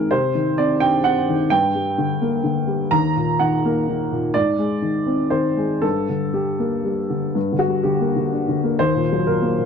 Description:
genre	neoclassical minimalist piano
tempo	116-130 BPM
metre	3/4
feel	rubato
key	G harmonic minor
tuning	A4 = 441 Hz
part	warm upright piano	solo	0.0-9.7 s	Eb2 to Bb5	-18 LUFS	equal	none
room	light reverb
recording	dark, warm production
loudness	-18 LUFS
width	side -6 dB against mid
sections	0.0-7.3 A section; 7.3-9.7 B section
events	none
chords	0.1 Cmadd9; 1.5 Gm; 2.9 Eb5; 4.3 Ab; 5.8 Gm; 8.8 Ebm

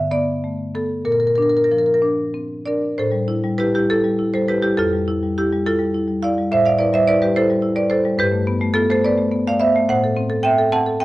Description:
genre	classical, contemporary piece for solo marimba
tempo	62-72 BPM (dotted quarters)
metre	6/8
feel	rubato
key	A minor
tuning	A4 = 440 Hz
part	marimba with medium hard mallets	solo	0.0-11.0 s	F2 to A5	-16 LUFS	equal	none
room	moderate stone room reverb, RT60 1.0 s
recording	worn, warbling old tape, cassette tape, warbly pitch drift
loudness	-16 LUFS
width	side -17 dB against mid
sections	0.0-3.0 A section; 3.0-11.0 B section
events	none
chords	0.0 Gadd9; 1.1 Bb; 3.0 Am7; 4.8 Fmaj9; 6.5 Am7; 8.2 Gadd9; 9.9 Am6

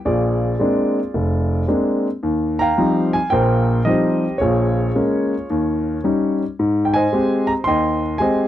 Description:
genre	solo jazz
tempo	110 BPM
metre	4/4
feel	swing 67% on 8ths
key	Eb major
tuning	A4 = 440 Hz
part	warm concert grand piano	solo	0.1-8.5 s	F1 to C6	-16 LUFS	equal	none
room	little or no reverb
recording	dry, close 1970s-style studio recording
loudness	-16 LUFS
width	side -12 dB against mid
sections	0.0-2.2 A section; 2.2-8.5 B section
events	none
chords	0.1 Bb9; 2.2 Eb69; 4.4 Bbm7; 5.5 Eb7; 6.6 Abmaj7

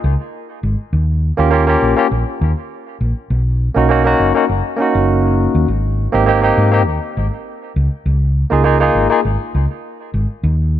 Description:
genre	sunset chillout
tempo	101 BPM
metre	4/4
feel	swing 54% on 16ths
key	unclear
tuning	A4 = 438 Hz
part	hollow-body short-scale fingered electric bass	bass	0.0-10.8 s	F#1 to Ab2	-15 LUFS	equal	none
part	barky tine electric piano	accompaniment	1.4-9.2 s	Bb3 to Ab4	-15 LUFS	moving between left 5 dB and right 6 dB	auto-pan, ping-pong delay
room	light reverb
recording	nothing above 8.0 kHz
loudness	-13 LUFS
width	side -11 dB against mid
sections	0.0-10.8 A section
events	none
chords	0.0 Db5; 0.9 Eb7; 3.3 Bmaj7; 5.7 Abmaj7; 7.8 Db6

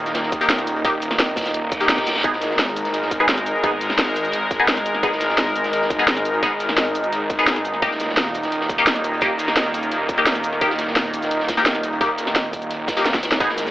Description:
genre	dark technical drum and bass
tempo	172 BPM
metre	4/4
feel	straight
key	unclear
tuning	A4 = 439 Hz
part	sweeping resonant pad	sustained chords	0.0-13.7 s	D#3 to A#4	-23 LUFS	equal	chorus, sidechain pumping
part	wide detuned saw bass	bass	0.0-13.7 s	D#1 to G#1	-28 LUFS	equal	chorus
part	crunchy breakbeat drum kit	drums	0.1-13.7 s	hi-hat, snare drum	-29 LUFS	equal	high-pass filter on hats, high-pass filter on snare, high-pass filter on room
part	drum and bass drum kit	drums	0.1-13.7 s	cabasa, hi-hat, snare drum	-21 LUFS	equal	none
part	electronic kick drum	drums	0.3-13.5 s	none	-26 LUFS	equal	none
part	band-passed chord stab	stabs	0.4-13.5 s	A#3 to G#4	-22 LUFS	left 1 dB	phaser, wide subtle chorus, dub echo
part	reverse cymbal	sound effects	1.7-2.2 s	none	-25 LUFS	equal	none
part	ethereal airy pad	texture	13.4-13.7 s	none	barely audible	none	none
room	light reverb, digital ambience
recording	telephone sound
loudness	-17 LUFS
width	side -15 dB against mid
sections	0.0-13.4 A section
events	drop 0.0-13.4; reverse cymbal 1.7-2.2; drum fill 13.1-13.4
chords	0.0 D#; 2.2 G#m; 7.8 D#5

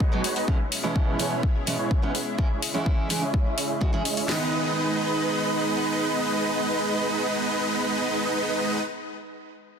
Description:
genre	EDM, festival progressive house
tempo	126 BPM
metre	4/4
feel	straight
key	G# minor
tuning	A4 = 444 Hz
part	lush unison pad	sustained chords	0.0-8.8 s	B2 to B4	-32 LUFS	left 1 dB	chorus, sidechain pumping
part	supersaw chords	riff	0.0-8.8 s	G#3 to G#5	-26 LUFS	right 1 dB	wide subtle chorus, sidechain pumping, low-pass filter, ping-pong delay
part	house drum kit	drums	0.0-4.4 s	hi-hat, kick drum, snare drum	-24 LUFS	left 1 dB	overdrive, studio ambience
part	fingerpicked steel-string acoustic guitar	accompaniment	0.1-8.8 s	B2 to G#4	-31 LUFS	right 4 dB	sidechain pumping, ping-pong delay
part	electronic hi-hat	drums	0.2-4.3 s	none	-29 LUFS	left 2 dB	studio ambience
room	light reverb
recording	dense, heavily limited modern master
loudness	-23 LUFS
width	side -7 dB against mid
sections	0.0-4.3 A section; 4.3-8.1 B section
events	filter sweep on supersaw synth 0.0-4.3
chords	0.5 E6; 2.4 C#m; 4.3 G#m

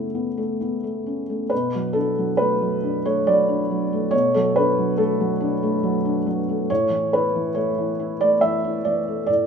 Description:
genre	neoclassical minimalist piano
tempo	70 BPM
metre	3/4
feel	rubato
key	B minor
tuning	A4 = 440 Hz
part	felt-muted upright piano	solo	0.0-9.5 s	A2 to E5	-19 LUFS	equal	none
room	moderate recital hall reverb, RT60 1.6 s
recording	minimal, uncompressed stereo recording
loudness	-19 LUFS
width	side -6 dB against mid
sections	0.0-1.5 A section; 1.5-9.5 B section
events	none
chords	0.0 A/C#; 1.5 Bm7; 6.7 A

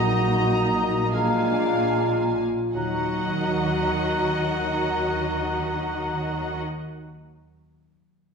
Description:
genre	classical, slow romantic movement for symphony orchestra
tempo	35-44 BPM (dotted quarters)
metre	6/8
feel	rubato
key	Eb minor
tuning	A4 = 440 Hz
part	warm symphonic violin section	melody	0.0-6.6 s	Gb5 to Bb5	-34 LUFS	left 3 dB	none
part	clear clarinet	second line	0.0-6.6 s	D4 to Gb4	-37 LUFS	equal	none
part	clear oboe	second line	0.0-6.6 s	Eb5 to Gb5	-34 LUFS	right 2 dB	none
part	mellow flute section	second line	0.0-6.6 s	Bb5	-30 LUFS	right 1 dB	none
part	rich chamber violin section	second line	0.0-6.6 s	Eb5 to F5	-34 LUFS	left 4 dB	none
part	dark bassoon	accompaniment	0.0-6.6 s	Gb3 to Bb3	-33 LUFS	right 1 dB	none
part	warm symphonic viola section	accompaniment	0.0-6.6 s	D4 to Gb4	-34 LUFS	right 1 dB	none
part	mellow French horn section	sustained chords	0.0-6.6 s	Eb4 to Gb4	-28 LUFS	left 2 dB	none
part	concert harp	arpeggios	0.0-7.4 s	Bb2 to Eb5	-33 LUFS	left 2 dB	none
part	warm symphonic cello section	bass	0.0-6.6 s	Bb2 to Eb3	-30 LUFS	right 2 dB	none
part	warm symphonic double bass section	bass	0.0-6.6 s	Bb1 to Eb2	-32 LUFS	right 3 dB	none
room	wet recital hall reverb, RT60 1.5 s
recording	recorded in a church or concert hall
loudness	-22 LUFS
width	side -5 dB against mid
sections	0.0-2.7 A section; 2.7-5.8 B section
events	slowing down 0.0-2.7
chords	0.0 Ebm/Bb; 1.1 Bb7; 2.7 Ebm

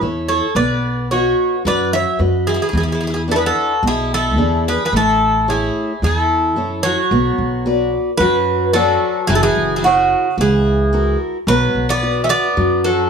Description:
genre	greek folk, Greek bouzouki band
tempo	110 BPM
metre	4/4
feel	straight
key	unclear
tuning	A4 = 436 Hz
part	picked steel-string acoustic guitar	accompaniment	0.0-13.1 s	B2 to D#5	-20 LUFS	left 2 dB	none
part	upright bass	bass	0.0-13.1 s	F#1 to F#2	-20 LUFS	right 1 dB	none
part	Greek bouzouki	melody	0.3-13.1 s	F#4 to E5	-17 LUFS	right 2 dB	plate reverb
part	Greek bouzouki	second line	0.3-13.1 s	C#3 to C#5	-23 LUFS	left 2 dB	none
room	moderate studio reverb, RT60 0.5 s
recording	small room ambience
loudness	-14 LUFS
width	side -6 dB against mid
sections	0.0-7.1 A section; 7.1-13.1 B section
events	none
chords	0.0 A; 0.6 B; 2.7 E7; 4.9 A; 7.1 Bm; 9.3 F#7; 11.5 Bm

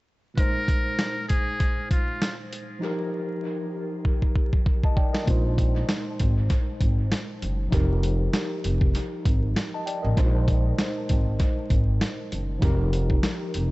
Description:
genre	hip hop, boom-bap hip-hop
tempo	98 BPM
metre	4/4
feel	swing 57% on 16ths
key	unclear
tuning	A4 = 440 Hz
part	mellow tine electric piano	accompaniment	0.3-13.7 s	Bb2 to A5	-30 LUFS	equal	fast stereo tremolo, cassette tape, high-pass filter, low-pass filter, dub echo
part	trumpet with metal mute	melody	0.4-2.4 s	F4 to Bb4	-31 LUFS	equal	high-pass filter, low-pass filter, dub echo
part	boom bap sampler-style drum kit	drums	0.4-13.7 s	hi-hat, kick drum, snare drum	-24 LUFS	equal	none
part	upright bass	bass	5.3-13.7 s	F1 to Bb1	-24 LUFS	equal	none
room	studio ambience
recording	echo-heavy mix, vinyl crackle, nothing above 8.0 kHz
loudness	-22 LUFS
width	side -21 dB against mid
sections	0.4-5.3 A section; 5.3-13.7 B section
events	drums muted 2.8-5.3; drum fill 4.0-5.3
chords	0.4 Bb9sus4; 2.8 F9sus4; 5.3 Bb9sus4; 7.7 F9sus4; 10.2 Bb9sus4; 12.6 F9sus4

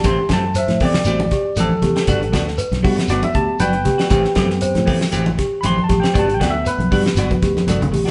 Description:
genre	afrobeat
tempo	118 BPM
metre	4/4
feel	swing 54% on 16ths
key	A dorian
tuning	A4 = 444 Hz
part	barky tine electric piano	accompaniment	0.0-8.1 s	F#3 to C6	-25 LUFS	equal	overdrive
part	small celesta	arpeggios	0.0-8.1 s	F#4 to C5	-25 LUFS	equal	none
part	semi-hollow electric guitar	stabs	0.0-8.1 s	E3 to G4	-27 LUFS	equal	none
part	fingered electric bass	bass	0.0-8.1 s	F#1 to A2	-24 LUFS	equal	none
part	damped 70s drum kit	drums	0.0-8.1 s	hi-hat, kick drum, snare drum	-24 LUFS	equal	none
part	congas	percussion	0.0-8.1 s	none	-26 LUFS	equal	none
part	shekere	percussion	0.0-8.1 s	none	-30 LUFS	equal	none
room	moderate large studio reverb, RT60 1.1 s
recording	band playing live in one room, nothing above 11.0 kHz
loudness	-17 LUFS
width	mono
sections	0.0-8.1 A section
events	tine electric piano solo 0.0-8.1; drum fill 7.2-8.1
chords	0.0 Am7; 2.1 Gmaj7; 4.1 Am7; 6.2 Gmaj7

